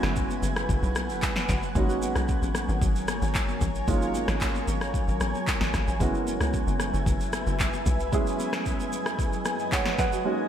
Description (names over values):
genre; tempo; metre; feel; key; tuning
amapiano; 113 BPM; 4/4; straight; unclear; A4 = 441 Hz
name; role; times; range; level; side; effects
dark grand piano; accompaniment; 0.0-10.5 s; G#3 to G#5; -31 LUFS; right 3 dB; wide subtle chorus
granular cloud pad; sustained chords; 0.0-10.5 s; F#3 to G#5; -32 LUFS; equal; built-in reverb
tight log drum bass; bass; 0.0-8.1 s; F#1 to C#2; -29 LUFS; equal; none
deep house drum kit; drums; 0.0-10.2 s; handclaps, kick drum, rim click, shaker, snare drum; -28 LUFS; equal; gated reverb
congas; percussion; 0.3-10.1 s; none; -39 LUFS; left 10 dB; none
room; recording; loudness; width
moderate lush hall reverb, RT60 1.5 s; bright 1980s-style digital production; -24 LUFS; side -9 dB against mid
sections
0.0-10.5 A section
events
grand piano fill 9.2-10.2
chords
0.0 F#9sus4; 1.8 G#9sus4; 6.0 F#9sus4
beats
0.16 0.69 1.22 | 1.75 2.29 2.82 3.35 | 3.88 4.41 4.94 5.47 | 6.00 6.53 7.06 7.59 | 8.13 8.66 9.19 9.72 | 10.25